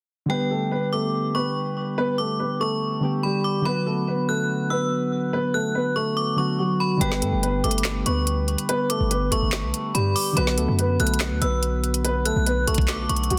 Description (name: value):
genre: hip hop, trap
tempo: 143 BPM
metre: 4/4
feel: half-time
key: unclear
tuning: A4 = 441 Hz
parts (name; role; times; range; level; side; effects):
- dark concert grand piano; melody; 0.3-13.4 s; F#3 to B4; -28 LUFS; equal; none
- metallic FM bell; second line; 0.3-13.4 s; G5 to F#6; -31 LUFS; equal; chorus, tape echo
- soft electric-piano-like synth keys; accompaniment; 0.3-13.4 s; D3 to B4; -29 LUFS; equal; chorus
- hard-hitting 808-style bass; bass; 7.0-13.4 s; G1 to G2; -27 LUFS; equal; none
- trap drum kit; drums; 7.0-13.4 s; handclaps, hi-hat, kick drum, snare drum; -28 LUFS; equal; none
room: light reverb, digital ambience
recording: dense, heavily limited modern master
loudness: -23 LUFS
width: mono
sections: 0.3-7.0 A section; 7.0-13.4 B section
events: none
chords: 0.3 G; 3.7 Bm; 7.0 G; 10.4 Bm